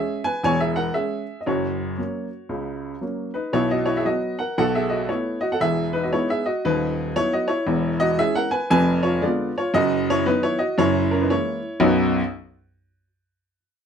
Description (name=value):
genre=jazz, stride piano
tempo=116 BPM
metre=4/4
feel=swing 63% on 8ths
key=B major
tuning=A4 = 443 Hz
part: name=warm upright piano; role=solo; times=0.0-12.2 s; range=D#1 to G#5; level=-20 LUFS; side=equal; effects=none
room=moderate studio reverb, RT60 0.5 s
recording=none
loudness=-20 LUFS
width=side -7 dB against mid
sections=0.0-11.8 A section; 11.8-13.8 B section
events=none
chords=0.0 C#m/E; 1.5 F#; 3.5 B5; 5.6 Emaj7; 6.6 B/D#; 7.7 C#m/E; 8.7 Fdim7; 9.7 B/F#; 10.8 F#9; 11.8 B